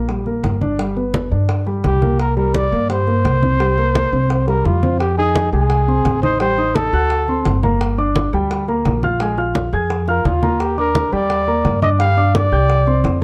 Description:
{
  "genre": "Afro-Cuban jazz",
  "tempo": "171 BPM",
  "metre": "4/4",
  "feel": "straight",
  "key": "C minor",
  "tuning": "A4 = 440 Hz",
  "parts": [
    { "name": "dark grand piano", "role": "accompaniment", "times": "0.0-13.2 s", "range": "G3 to Ab6", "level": "-23 LUFS", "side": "equal", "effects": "none" },
    { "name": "upright bass", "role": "bass", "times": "0.0-13.2 s", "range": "G1 to G2", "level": "-21 LUFS", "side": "equal", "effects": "none" },
    { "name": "bongos", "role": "percussion", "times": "0.1-13.2 s", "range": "none", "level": "-32 LUFS", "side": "equal", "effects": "none" },
    { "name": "congas", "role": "percussion", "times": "0.1-13.2 s", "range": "none", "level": "-25 LUFS", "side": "equal", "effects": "none" },
    { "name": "breathy trumpet", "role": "melody", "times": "1.9-7.6, 10.1-13.2 s", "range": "F4 to F5", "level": "-21 LUFS", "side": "equal", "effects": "none" }
  ],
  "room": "light reverb",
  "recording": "dark, warm production",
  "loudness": "-17 LUFS",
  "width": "mono",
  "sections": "0.0-5.0 A section; 5.0-13.2 B section",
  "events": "drum fill 4.5-5.0, 10.1-10.6",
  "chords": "0.0 Ebmaj7 (rootless); 0.8 G; 2.2 C7sus4; 5.0 Fm7; 6.4 Am7b5; 7.1 D7; 7.8 Gm7; 9.2 Bb5; 10.6 Ebmaj7; 12.0 G5; 12.7 Csus2",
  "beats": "0.09 0.44 | 0.79 1.14 1.49 1.84 | 2.19 2.54 2.90 3.25 | 3.60 3.95 4.30 4.65 | 5.00 5.35 5.70 6.05 | 6.40 6.75 7.10 7.45 | 7.80 8.15 8.50 8.85 | 9.20 9.55 9.90 10.25 | 10.60 10.95 11.30 11.65 | 11.99 12.34 12.69 13.04"
}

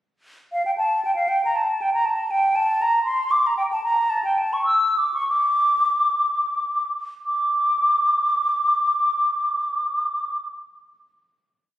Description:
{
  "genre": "classical, baroque-style fantasia for unaccompanied flute",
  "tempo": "56-81 BPM (dotted quarters)",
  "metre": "6/8",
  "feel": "rubato",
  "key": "D minor",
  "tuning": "A4 = 438 Hz",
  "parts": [
    { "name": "mellow hollow silver concert flute", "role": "solo", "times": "0.5-10.4 s", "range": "F5 to E6", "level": "-19 LUFS", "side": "equal", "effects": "none" }
  ],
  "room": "wet recital hall reverb, RT60 1.4 s",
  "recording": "recorded on a phone in the room, studio reverb",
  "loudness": "-19 LUFS",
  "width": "side -13 dB against mid",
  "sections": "0.5-7.2 A section; 7.2-11.1 final note",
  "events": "slowing down 2.8-7.2",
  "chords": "none",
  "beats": "| 0.51 1.30 | 2.06 2.81 | 3.56 4.37 | 5.26 6.21 | 7.23 8.20 | 9.16 10.15"
}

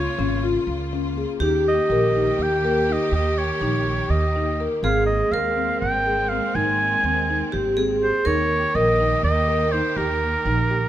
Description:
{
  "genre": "contemporary instrumental, chamber music in an uneven meter",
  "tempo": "245 BPM (eighths)",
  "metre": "7/8",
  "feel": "straight",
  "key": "unclear",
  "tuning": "A4 = 440 Hz",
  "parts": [
    { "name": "clear oboe", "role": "melody", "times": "0.0-10.9 s", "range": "Bb4 to Ab5", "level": "-23 LUFS", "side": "right 1 dB", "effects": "none" },
    { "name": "vibraphone with hard mallets", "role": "second line", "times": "0.0-10.9 s", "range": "F4 to Bb4", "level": "-25 LUFS", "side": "right 1 dB", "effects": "none" },
    { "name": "rich studio string section", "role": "sustained chords", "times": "0.0-10.9 s", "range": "Db3 to G4", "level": "-30 LUFS", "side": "equal", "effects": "none" },
    { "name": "marimba with soft mallets", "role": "arpeggios", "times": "0.0-10.9 s", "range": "C4 to Bb4", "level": "-26 LUFS", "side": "left 4 dB", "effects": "none" },
    { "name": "upright bass", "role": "bass", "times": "0.0-10.8 s", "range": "Ab1 to Eb2", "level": "-25 LUFS", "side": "right 2 dB", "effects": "none" }
  ],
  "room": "light reverb",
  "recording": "close, detailed microphones",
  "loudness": "-19 LUFS",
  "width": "side -12 dB against mid",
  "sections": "0.0-10.9 A section",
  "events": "none",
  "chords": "0.0 Db6; 1.4 Eb; 4.8 Abadd9; 8.3 Eb",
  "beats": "0.19 0.43 0.68 0.92 1.17 | 1.41 1.66 1.90 2.15 2.39 2.64 2.88 | 3.13 3.37 3.62 3.86 4.11 4.35 4.60 | 4.84 5.09 5.33 5.58 5.82 6.07 6.31 | 6.55 6.80 7.04 7.29 7.53 7.78 8.02 | 8.27 8.51 8.76 9.00 9.25 9.49 9.73 | 9.98 10.22 10.47 10.71"
}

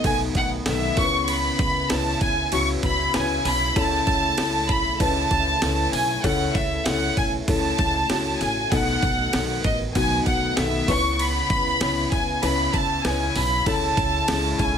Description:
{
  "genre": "piano-driven pop",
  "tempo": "97 BPM",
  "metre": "4/4",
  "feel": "straight",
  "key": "unclear",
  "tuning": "A4 = 442 Hz",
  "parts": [
    { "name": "warm studio violin section", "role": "melody", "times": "0.0-14.8 s", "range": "D#5 to C#6", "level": "-23 LUFS", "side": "right 1 dB", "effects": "none" },
    { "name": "felt-muted upright piano", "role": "accompaniment", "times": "0.0-14.8 s", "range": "B2 to C#5", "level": "-27 LUFS", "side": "left 6 dB", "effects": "none" },
    { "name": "sweeping resonant pad", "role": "sustained chords", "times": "0.0-14.8 s", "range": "C#3 to E4", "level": "-33 LUFS", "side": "right 2 dB", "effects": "wide subtle chorus" },
    { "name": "upright bass", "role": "bass", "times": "0.0-14.8 s", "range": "A1 to C#2", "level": "-28 LUFS", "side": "right 1 dB", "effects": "none" },
    { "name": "breakbeat sampler-style drum kit", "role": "drums", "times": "0.0-14.7 s", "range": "hi-hat, kick drum, ride cymbal, snare drum", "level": "-26 LUFS", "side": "right 1 dB", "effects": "none" }
  ],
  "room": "light reverb, small room ambience",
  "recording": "none",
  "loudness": "-20 LUFS",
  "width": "side -8 dB against mid",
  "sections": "0.0-14.8 A section",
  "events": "none",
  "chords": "0.0 B7; 1.0 C#m7; 3.8 A; 8.7 B7; 10.9 C#m7; 13.7 A",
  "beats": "0.04 0.67 | 1.28 1.91 2.52 3.14 | 3.76 4.38 5.00 5.62 | 6.24 6.86 7.48 8.10 | 8.72 9.34 9.95 10.57 | 11.19 11.81 12.43 13.05 | 13.66 14.28"
}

